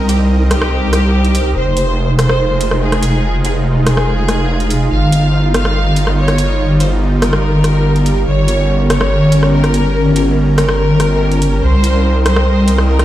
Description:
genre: heavy wobble dubstep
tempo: 143 BPM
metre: 4/4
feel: half-time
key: F minor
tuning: A4 = 440 Hz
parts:
  - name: supersaw pad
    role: sustained chords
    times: 0.0-13.0 s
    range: G3 to Eb5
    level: -23 LUFS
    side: right 1 dB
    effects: none
  - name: wobble bass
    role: bass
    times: 0.0-13.0 s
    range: F1 to C2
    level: -12 LUFS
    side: equal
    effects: chorus, overdrive
  - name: ethereal airy pad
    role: texture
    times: 0.0-13.0 s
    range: Db4 to G5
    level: -23 LUFS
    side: equal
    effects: ensemble chorus, built-in reverb, phaser
  - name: bright studio violin section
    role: melody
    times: 0.1-13.0 s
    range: G4 to F5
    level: -20 LUFS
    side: equal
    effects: vintage 12-bit sampler grit, ping-pong delay
  - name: dubstep drum kit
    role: drums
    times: 0.1-13.0 s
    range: hi-hat, rim click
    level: -19 LUFS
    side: equal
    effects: none
room: light reverb, digital ambience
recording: played on a big sound system in a bare room, stone room reverb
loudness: -11 LUFS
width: side -13 dB against mid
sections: 0.0-13.0 A section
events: none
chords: 0.0 Cm7; 1.6 Fm7; 4.9 Ebadd9/G; 8.3 Gdim; 11.6 Cm7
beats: 0.30 0.72 1.14 | 1.56 1.98 2.40 2.82 | 3.24 3.66 4.08 4.50 | 4.92 5.33 5.75 6.17 | 6.59 7.01 7.43 7.85 | 8.27 8.69 9.11 9.53 | 9.95 10.37 10.79 11.21 | 11.63 12.05 12.47 12.89

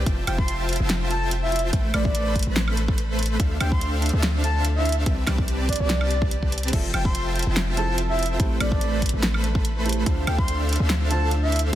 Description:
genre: future bass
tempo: 144 BPM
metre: 4/4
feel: swing 54% on 16ths, half-time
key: unclear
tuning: A4 = 440 Hz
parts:
  - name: dense compressed supersaw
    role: riff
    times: 0.0-11.8 s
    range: A3 to B5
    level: -28 LUFS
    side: right 1 dB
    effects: sidechain pumping, digital delay
  - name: warm 808-style bass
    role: bass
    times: 0.0-11.7 s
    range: F1 to D2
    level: -24 LUFS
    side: equal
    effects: sidechain pumping
  - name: electronic kick drum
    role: drums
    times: 0.1-11.8 s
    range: none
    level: -24 LUFS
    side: equal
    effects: none
  - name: pop drum kit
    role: drums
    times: 0.1-11.8 s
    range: crash cymbal, hi-hat, snare drum, woodblock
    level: -28 LUFS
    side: equal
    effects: none
  - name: breathy flute-like synth lead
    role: melody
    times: 0.3-11.6 s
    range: D5 to C6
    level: -30 LUFS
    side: equal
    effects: wide subtle chorus, sidechain pumping, digital delay
  - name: felt-muted upright piano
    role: accompaniment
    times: 6.7-11.8 s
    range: C3 to E5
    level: -32 LUFS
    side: right 4 dB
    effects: sidechain pumping, digital delay
room: light reverb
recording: dense, heavily limited modern master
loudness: -20 LUFS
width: side -12 dB against mid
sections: 0.0-11.8 A section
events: drum fill 6.5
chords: 0.1 Fmaj7; 1.7 Am7; 3.4 Dm7; 5.1 Cmaj7; 6.7 Fmaj7; 8.4 Am7; 10.1 Dm7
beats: | 0.06 0.48 0.90 1.31 | 1.73 2.15 2.56 2.98 | 3.40 3.81 4.23 4.65 | 5.06 5.48 5.90 6.31 | 6.73 7.15 7.56 7.98 | 8.40 8.81 9.23 9.65 | 10.06 10.48 10.90 11.31 | 11.73

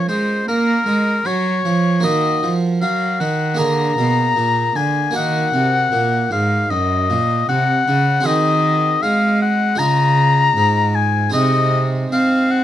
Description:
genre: classical, baroque-style sonata movement with continuo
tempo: 77 BPM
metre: 4/4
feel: straight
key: unclear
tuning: A4 = 440 Hz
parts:
  - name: warm oboe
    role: melody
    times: 0.0-12.6 s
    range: Bb4 to Bb5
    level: -18 LUFS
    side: left 5 dB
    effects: none
  - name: harpsichord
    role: accompaniment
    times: 0.0-12.6 s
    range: Gb2 to Bb4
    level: -22 LUFS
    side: right 4 dB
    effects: none
  - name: rich cello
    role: bass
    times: 0.0-12.6 s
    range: Gb2 to C4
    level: -19 LUFS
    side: right 2 dB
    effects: none
room: light reverb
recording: close, detailed microphones, faint mains hum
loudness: -14 LUFS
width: side -11 dB against mid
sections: 0.0-12.6 A section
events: none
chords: 0.0 Bbm; 2.0 Ebm; 3.6 Bb7; 5.1 Ebm; 8.3 Ab7/Eb; 9.8 Db; 11.3 Ab/C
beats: 0.47 1.25 | 2.03 2.81 3.59 4.37 | 5.15 5.93 6.71 7.49 | 8.26 9.03 9.80 10.57 | 11.35 12.12

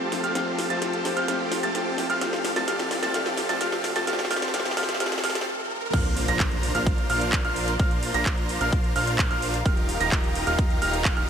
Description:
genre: EDM, festival progressive house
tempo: 129 BPM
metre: 4/4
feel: straight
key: Bb major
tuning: A4 = 442 Hz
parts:
  - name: felt-muted upright piano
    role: accompaniment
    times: 0.0-6.0 s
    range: F3 to G4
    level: -32 LUFS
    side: left 4 dB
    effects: sidechain pumping, ping-pong delay
  - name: lush unison pad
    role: sustained chords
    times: 0.0-11.3 s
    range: G4 to C6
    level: -36 LUFS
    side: equal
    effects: chorus, phaser, sidechain pumping
  - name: dark concert grand piano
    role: arpeggios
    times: 0.0-11.3 s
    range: F6 to Bb6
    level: -29 LUFS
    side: right 3 dB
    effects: sidechain pumping, ping-pong delay
  - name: supersaw chords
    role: riff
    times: 0.0-11.3 s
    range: C4 to Bb5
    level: -28 LUFS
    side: equal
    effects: sidechain pumping, low-pass filter, ping-pong delay
  - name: fat analog bass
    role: bass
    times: 0.0-11.3 s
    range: Eb1 to F2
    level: -33 LUFS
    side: equal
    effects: none
  - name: riser and impact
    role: sound effects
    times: 2.1-7.8 s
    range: none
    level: -35 LUFS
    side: right 1 dB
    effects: none
  - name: house drum kit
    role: drums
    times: 0.1-11.3 s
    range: crash cymbal, handclaps, hi-hat, snare drum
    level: -30 LUFS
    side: equal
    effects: none
  - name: electronic kick drum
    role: drums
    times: 5.9-11.1 s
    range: none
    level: -24 LUFS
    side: equal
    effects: overdrive
room: light reverb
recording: high-pass filter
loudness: -22 LUFS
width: side -8 dB against mid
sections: 0.0-5.9 A section; 5.9-11.3 B section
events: build-up 0.0-5.9; drum fill 0.0-5.5; stop 5.5-5.9; drop 5.9-11.3; impact 5.9-7.8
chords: 0.0 Fadd9; 2.2 Gsus2; 5.9 Bbadd9; 9.7 Ebadd9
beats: | 0.35 0.82 1.28 1.75 | 2.21 2.68 3.14 3.61 | 4.08 4.54 5.00 5.47 | 5.93 6.40 6.87 7.33 | 7.80 8.26 8.73 9.19 | 9.66 10.12 10.59 11.05

